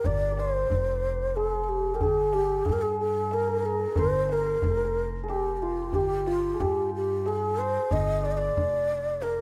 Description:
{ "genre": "Persian modal ensemble", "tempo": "92 BPM", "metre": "3/4", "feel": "straight", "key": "G dastgah shur", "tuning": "A4 = 438 Hz", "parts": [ { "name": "breathy low ney", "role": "melody", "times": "0.0-9.4 s", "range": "F4 to Eb5", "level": "-29 LUFS", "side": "equal", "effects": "none" }, { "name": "santur", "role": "second line", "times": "0.0-9.4 s", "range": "F4 to Eb5", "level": "-35 LUFS", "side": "equal", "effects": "none" }, { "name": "tombak", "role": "percussion", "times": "0.0-9.4 s", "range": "none", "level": "-34 LUFS", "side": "equal", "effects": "none" }, { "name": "upright bass", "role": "bass", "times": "0.1-9.4 s", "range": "F1 to G2", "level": "-35 LUFS", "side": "equal", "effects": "none" } ], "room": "light reverb, small room reverb", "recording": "rough home demo mix", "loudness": "-27 LUFS", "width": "mono", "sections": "0.1-9.4 A section", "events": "none", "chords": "none", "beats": "| 0.07 0.72 1.37 | 2.02 2.68 3.33 | 3.99 4.64 5.29 | 5.95 6.60 7.26 | 7.91 8.57 9.22" }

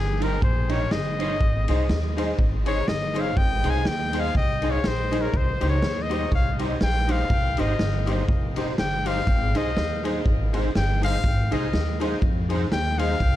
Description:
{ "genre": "ska", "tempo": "122 BPM", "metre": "4/4", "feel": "swing 57% on 8ths", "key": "unclear", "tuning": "A4 = 438 Hz", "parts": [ { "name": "clear trumpet", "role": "melody", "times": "0.0-13.4 s", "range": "Ab4 to Ab5", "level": "-28 LUFS", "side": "left 3 dB", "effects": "tape echo, plate reverb" }, { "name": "upright bass", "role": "bass", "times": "0.0-13.4 s", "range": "F1 to F2", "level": "-26 LUFS", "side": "equal", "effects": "none" }, { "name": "electric guitar at the edge of break-up", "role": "accompaniment", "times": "0.2-13.1 s", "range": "Eb4 to C5", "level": "-32 LUFS", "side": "right 4 dB", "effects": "ensemble chorus, tape echo, plate reverb" }, { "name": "raw garage drum kit", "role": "drums", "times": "0.2-13.3 s", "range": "hi-hat, kick drum, ride cymbal, snare drum", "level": "-26 LUFS", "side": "equal", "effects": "none" }, { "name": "bright upright piano", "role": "stabs", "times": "1.7-13.1 s", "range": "Eb4 to C5", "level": "-32 LUFS", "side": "left 6 dB", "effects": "plate reverb" } ], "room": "little or no reverb", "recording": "none", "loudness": "-21 LUFS", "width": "side -13 dB against mid", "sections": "0.0-13.4 A section", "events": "trumpet solo 0.0-13.4", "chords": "0.0 Cm; 9.3 Ab", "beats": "0.42 0.91 | 1.41 1.90 2.39 2.88 | 3.37 3.86 4.35 4.85 | 5.34 5.83 6.32 6.81 | 7.30 7.80 8.29 8.78 | 9.27 9.77 10.26 10.75 | 11.24 11.73 12.22 12.71 | 13.20" }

